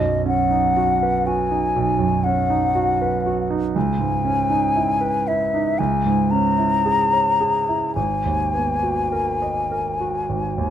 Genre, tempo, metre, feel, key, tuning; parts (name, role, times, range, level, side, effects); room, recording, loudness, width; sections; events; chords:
classical, impressionist duo for flute and grand piano; 50-61 BPM; 4/4; rubato; A4 = 436 Hz
mellow hollow silver concert flute; melody; 0.0-10.7 s; D#5 to A#5; -20 LUFS; left 3 dB
warm concert grand piano; accompaniment; 0.0-10.7 s; G#1 to D#5; -21 LUFS; right 4 dB
light reverb; close, detailed microphones; -18 LUFS; side -10 dB against mid
0.0-10.7 A section
0.0 Badd9; 3.8 C#m9; 5.8 C#m6; 8.0 G#m9